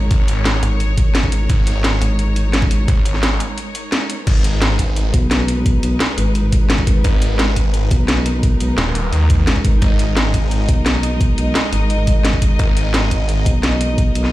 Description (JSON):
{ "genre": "dark technical drum and bass", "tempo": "173 BPM", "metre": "4/4", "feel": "straight", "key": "G# minor", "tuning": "A4 = 438 Hz", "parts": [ { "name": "warm studio string section", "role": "sustained chords", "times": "0.0-14.3 s", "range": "G#3 to D#5", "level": "-24 LUFS", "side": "equal", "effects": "sidechain pumping" }, { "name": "vowel-sweep wobble bass", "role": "bass", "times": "0.0-2.9, 5.1-14.3 s", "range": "G#1 to B1", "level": "-17 LUFS", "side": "equal", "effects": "chorus" }, { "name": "snarling distorted saw bass", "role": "bass", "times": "0.1-13.4 s", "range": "D#1 to D#2", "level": "-17 LUFS", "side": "equal", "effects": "distortion, tube saturation" }, { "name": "drum and bass drum kit", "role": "drums", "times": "0.1-14.3 s", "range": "crash cymbal, hi-hat, snare drum", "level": "-21 LUFS", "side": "equal", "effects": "none" }, { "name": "electronic kick drum", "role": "drums", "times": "0.1-14.1 s", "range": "none", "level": "-16 LUFS", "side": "equal", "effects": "overdrive" } ], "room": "digital ambience", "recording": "played on a big sound system in a bare room, stone room reverb", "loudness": "-14 LUFS", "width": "side -16 dB against mid", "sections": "0.0-4.3 A section; 4.3-14.3 A section", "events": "drop 0.0-4.3, 4.3-14.3; break 3.6-4.3", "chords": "0.0 G#sus2; 4.3 G#madd9" }